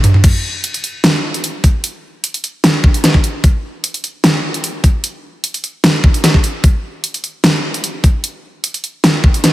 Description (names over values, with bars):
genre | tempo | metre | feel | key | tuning
dubstep | 150 BPM | 4/4 | half-time | none | none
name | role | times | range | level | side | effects
dubstep drum kit | drums | 0.0-9.5 s | crash cymbal, hi-hat, snare drum, toms | -13 LUFS | equal | overdrive
electronic kick drum | drums | 0.2-9.3 s | none | -10 LUFS | equal | overdrive
room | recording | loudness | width
light reverb | heavily compressed radio sound, multiband compression | -12 LUFS | side -16 dB against mid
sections
0.0-9.5 A section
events
drum fill 0.0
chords
none